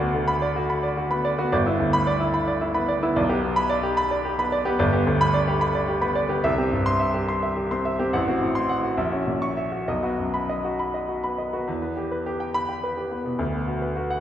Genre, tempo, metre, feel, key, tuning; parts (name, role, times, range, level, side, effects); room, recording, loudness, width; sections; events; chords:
classical, virtuoso piano study; 65-74 BPM (dotted quarters); 6/8; rubato; E minor from 4.8 s; A4 = 439 Hz
clear grand piano; solo; 0.0-14.2 s; G1 to C#6; -21 LUFS; equal
wet recital hall reverb, RT60 1.6 s; heard from further back in the room; -21 LUFS; side -10 dB against mid
0.0-11.7 A section; 11.7-14.2 B section
0.0 Bm/D; 1.5 G6; 3.2 G/B; 4.8 G; 6.4 C; 8.1 F#dim/A; 9.0 F#7/A#; 9.9 B; 11.7 Em; 13.4 Bm/D